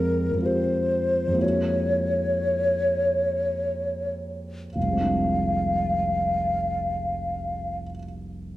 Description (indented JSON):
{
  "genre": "classical, impressionist duo for flute and grand piano",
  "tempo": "48-65 BPM",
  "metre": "3/4",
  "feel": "rubato",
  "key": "F dorian",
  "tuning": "A4 = 441 Hz",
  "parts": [
    { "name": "mellow hollow concert flute", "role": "melody", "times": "0.0-7.8 s", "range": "Bb4 to F5", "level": "-24 LUFS", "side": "left 1 dB", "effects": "none" },
    { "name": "dark grand piano", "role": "accompaniment", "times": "0.0-8.6 s", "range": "F1 to G4", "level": "-27 LUFS", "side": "right 1 dB", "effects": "none" }
  ],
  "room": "wet recital hall reverb, RT60 1.6 s",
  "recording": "none",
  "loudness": "-22 LUFS",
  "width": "side -15 dB against mid",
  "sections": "0.0-4.8 A section; 4.8-8.4 B section",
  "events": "slowing down 0.0-4.8",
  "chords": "0.0 Fmadd9; 1.4 Gb9/F; 4.8 Fm6"
}